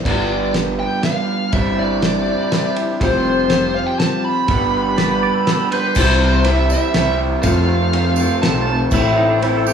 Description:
folk rock and heartland rock; 122 BPM; 3/4; straight; A4 = 439 Hz
picked old ladder-braced acoustic guitar; accompaniment; 0.0-9.7 s; A2 to C5; -22 LUFS; left 2 dB
musette accordion; sustained chords; 0.0-9.7 s; B3 to C5; -30 LUFS; right 2 dB
electric guitar through a small old amp; riff; 0.0-9.7 s; F2 to G4; -21 LUFS; right 1 dB
bluesy overdriven lead guitar; melody; 0.1-8.8 s; B4 to B5; -21 LUFS; equal; distortion
upright bass; bass; 0.1-9.7 s; F1 to F2; -21 LUFS; equal
cloth-damped thuddy drum kit; drums; 0.1-9.5 s; crash cymbal, kick drum, ride cymbal, snare drum; -22 LUFS; equal
pedal steel guitar; second line; 5.0-6.0, 8.9-9.7 s; D4 to D5; -24 LUFS; right 5 dB
tambourine; percussion; 5.9-9.7 s; -34 LUFS; right 5 dB
wet recital hall reverb, RT60 1.3 s; recorded in a church or concert hall, small room ambience; -14 LUFS; side -7 dB against mid
0.0-6.0 A section; 6.0-9.7 B section
0.0 G; 1.5 Cadd9/G; 3.0 Fsus2; 4.5 G; 6.0 C; 7.4 F; 8.9 Am

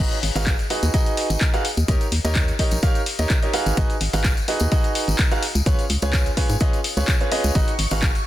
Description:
piano house; 127 BPM; 4/4; swing 53% on 16ths; G# dorian; A4 = 442 Hz
bright grand piano; riff; 0.0-8.1 s; C#4 to E#5; -25 LUFS; right 2 dB; sidechain pumping, ping-pong delay
organ-like FM bass; bass; 0.0-8.2 s; G#1 to G#2; -22 LUFS; equal; sidechain pumping
tambourine; percussion; 0.0-8.2 s; -33 LUFS; left 3 dB
punchy analog drum machine; drums; 0.1-8.2 s; handclaps, hi-hat; -26 LUFS; left 2 dB
electronic kick drum; drums; 0.5-8.1 s; -20 LUFS; equal
string machine, violins; sustained chords; 7.6-8.3 s; C#6; -35 LUFS; right 1 dB; ensemble chorus, sidechain pumping
little or no reverb; dense, heavily limited modern master; -18 LUFS; side -14 dB against mid
0.0-8.3 A section
0.0 G#m7; 1.6 D#7; 3.5 G#m7; 5.4 C#7; 7.6 G#m7

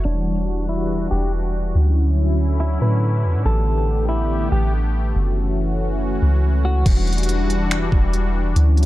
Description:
hip hop, atmospheric cloud-rap; 141 BPM; 4/4; half-time; E dorian; A4 = 440 Hz
sweeping resonant pad; sustained chords; 0.0-8.9 s; D3 to G4; -24 LUFS; left 1 dB; chorus, sidechain pumping, low-pass filter
soft 808-style bass; bass; 0.0-8.9 s; E1 to A2; -18 LUFS; equal
clean electric guitar; melody; 0.1-6.8 s; D4 to B4; -28 LUFS; equal; low-pass filter, tape echo
smooth R&B drum kit; drums; 6.9-8.9 s; crash cymbal, finger snaps, hi-hat, kick drum; -20 LUFS; equal
little or no reverb; dark, warm production; -17 LUFS; side -16 dB against mid
0.1-6.9 A section; 6.9-8.9 B section
filter sweep 0.1-6.9
0.1 Em9; 1.8 Dmaj9; 3.5 A9sus4; 5.2 F#m7; 6.9 Em9

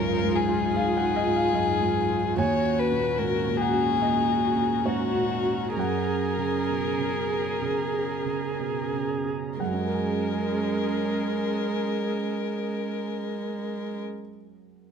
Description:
neoclassical piano and strings; 59-77 BPM; 4/4; rubato; F# major; A4 = 440 Hz
dark violin; melody; 0.0-14.0 s; F#4 to C#5; -29 LUFS; left 7 dB; plate reverb
dark viola; accompaniment; 0.0-14.0 s; G#3 to G#4; -30 LUFS; right 3 dB
warm concert grand piano; accompaniment; 0.0-14.9 s; C#2 to A#5; -28 LUFS; right 3 dB
airy breathy pad; sustained chords; 0.0-14.0 s; C#4 to A#5; -33 LUFS; right 1 dB; chorus
light reverb; dark, warm production; -24 LUFS; side -7 dB against mid
0.0-9.6 A section; 9.6-13.6 B section
slowing down 0.7-9.6
0.0 C#add9; 2.4 D#m7; 5.8 F#add9

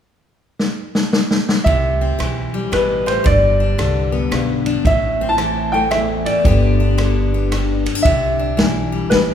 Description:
honky-tonk and classic country; 112 BPM; 3/4; swing 65% on 8ths; C major; A4 = 440 Hz
vintage drum kit; drums; 0.6-9.3 s; kick drum, ride cymbal, rim click, snare drum; -20 LUFS; equal
clear upright piano; melody; 1.6-9.2 s; B4 to A5; -18 LUFS; equal
picked steel-string acoustic guitar; accompaniment; 1.7-9.3 s; E2 to G4; -21 LUFS; left 5 dB
upright bass; bass; 1.7-9.3 s; G1 to C2; -20 LUFS; right 1 dB
wet recital hall reverb, RT60 1.7 s; recorded in a church or concert hall; -14 LUFS; side -9 dB against mid
0.1-1.7 A section; 1.7-9.3 B section
drum fill 0.6-1.7
0.1 N.C.; 1.7 C; 3.3 G; 4.9 Am; 6.5 G; 8.1 Cadd9

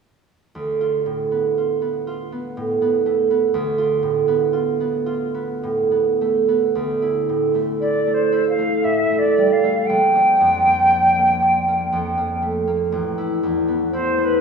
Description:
classical, impressionist duo for flute and harp; 52-62 BPM; 3/4; rubato; D minor; A4 = 438 Hz
concert harp; accompaniment; 0.6-14.4 s; A1 to F4; -19 LUFS; right 3 dB
silver concert flute; melody; 7.8-14.4 s; B4 to G5; -17 LUFS; equal
wet recital hall reverb, RT60 1.4 s; heard from further back in the room, small room ambience; -17 LUFS; side -5 dB against mid
0.5-6.8 A section; 6.8-14.4 B section
0.5 Dm6; 6.8 Dmadd9; 9.9 Bb6; 12.9 Asus2

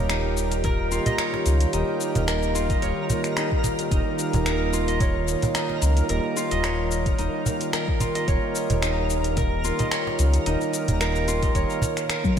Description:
organic downtempo; 110 BPM; 4/4; swing 54% on 16ths; Eb mixolydian; A4 = 440 Hz
pedal harmonium; accompaniment; 0.0-12.4 s; G3 to Bb4; -30 LUFS; right 4 dB; sidechain pumping, ping-pong delay
airy breathy pad; sustained chords; 0.0-12.4 s; Eb3 to Bb4; -30 LUFS; left 1 dB; chorus, sidechain pumping
Celtic harp; arpeggios; 0.0-12.4 s; Eb4 to Eb5; -28 LUFS; equal; ping-pong delay
round analog bass; bass; 0.0-12.4 s; Eb1 to Db2; -25 LUFS; equal; tube saturation
twinkling granular texture; texture; 0.0-12.4 s; Bb4; -36 LUFS; right 1 dB; built-in reverb, ensemble chorus
afro-pop drum kit; drums; 0.1-12.4 s; cabasa, finger snaps, hi-hat, toms; -29 LUFS; left 2 dB; studio ambience
cajon; percussion; 0.5-11.9 s; -28 LUFS; right 2 dB
electronic kick drum; drums; 0.6-12.3 s; -25 LUFS; equal; studio ambience
moderate lush hall reverb, RT60 2.1 s; bright 1980s-style digital production; -21 LUFS; side -8 dB against mid
0.0-12.4 A section
drum fill 12.2
0.0 Eb

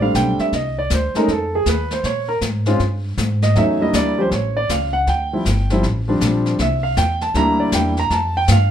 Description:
jazz piano trio; 158 BPM; 4/4; swing 65% on 8ths; F major; A4 = 440 Hz
warm concert grand piano; melody; 0.0-8.7 s; F3 to Bb5; -18 LUFS; right 1 dB
upright bass; bass; 0.0-8.7 s; G1 to Bb2; -20 LUFS; equal
jazz brush drum kit; drums; 0.1-8.7 s; brushed snare drum, hi-hat, kick drum, snare drum; -24 LUFS; left 3 dB
moderate club reverb, RT60 0.7 s; minimal, uncompressed stereo recording; -16 LUFS; side -9 dB against mid
0.0-8.7 A section
grand piano solo 0.0-8.7
0.0 F69; 0.5 Cmadd9; 1.3 F7; 2.0 Bbm7; 3.6 Em7b5; 4.3 A; 5.1 Dm11; 6.6 C9; 8.1 Fadd9

